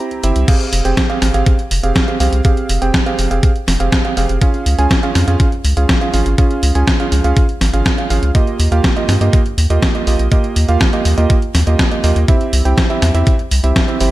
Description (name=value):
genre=italo disco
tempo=122 BPM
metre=4/4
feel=straight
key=F minor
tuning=A4 = 439 Hz
part: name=warm electric grand piano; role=stabs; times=0.0-14.1 s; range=Bb3 to Bb5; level=-18 LUFS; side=right 3 dB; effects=vintage 12-bit sampler grit, digital delay
part: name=detuned 8-bit digital drum machine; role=drums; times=0.1-14.1 s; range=crash cymbal, hi-hat, snare drum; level=-19 LUFS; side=equal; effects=small room ambience, gated reverb
part: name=round analog bass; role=bass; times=0.2-14.1 s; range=F1 to G2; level=-14 LUFS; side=equal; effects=none
part: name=electronic kick drum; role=drums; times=0.5-13.9 s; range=none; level=-14 LUFS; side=equal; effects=small room ambience
room=little or no reverb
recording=none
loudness=-12 LUFS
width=side -16 dB against mid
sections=0.5-14.1 A section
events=none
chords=0.5 Fmadd9; 4.4 Db; 8.3 Ebadd9; 12.3 C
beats=| 0.48 0.97 1.46 1.96 | 2.45 2.94 3.43 3.92 | 4.42 4.91 5.40 5.89 | 6.38 6.87 7.37 7.86 | 8.35 8.84 9.33 9.82 | 10.32 10.81 11.30 11.79 | 12.28 12.78 13.27 13.76